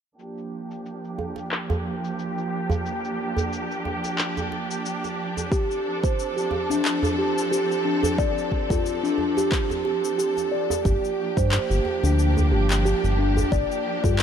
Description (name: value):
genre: organic downtempo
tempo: 90 BPM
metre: 4/4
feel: swing 56% on 16ths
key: G minor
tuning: A4 = 440 Hz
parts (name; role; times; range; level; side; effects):
- rich symphonic string section; sustained chords; 0.2-14.2 s; F3 to A4; -28 LUFS; right 2 dB; sidechain pumping, low-pass filter
- electronic cabasa and handclaps; drums; 0.2-14.2 s; none; -30 LUFS; left 2 dB; overdrive, low-pass filter on perc, low-pass filter on snare
- djembe; percussion; 1.2-14.2 s; none; -29 LUFS; right 3 dB; none
- steel tongue drum; arpeggios; 5.5-14.2 s; D4 to D5; -24 LUFS; equal; vintage 12-bit sampler grit, digital delay
- electronic kick drum; drums; 5.5-14.2 s; none; -25 LUFS; equal; overdrive
- round analog bass; bass; 10.9-14.2 s; G1 to G2; -21 LUFS; left 1 dB; none
room: light reverb, small room ambience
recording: none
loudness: -22 LUFS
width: side -8 dB against mid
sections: 0.2-10.8 A section; 10.8-14.2 B section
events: filter sweep on drum 0.2-10.8; filter sweep on string section 0.2-10.8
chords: 0.2 Gm7; 5.5 Dm7; 10.8 Gm7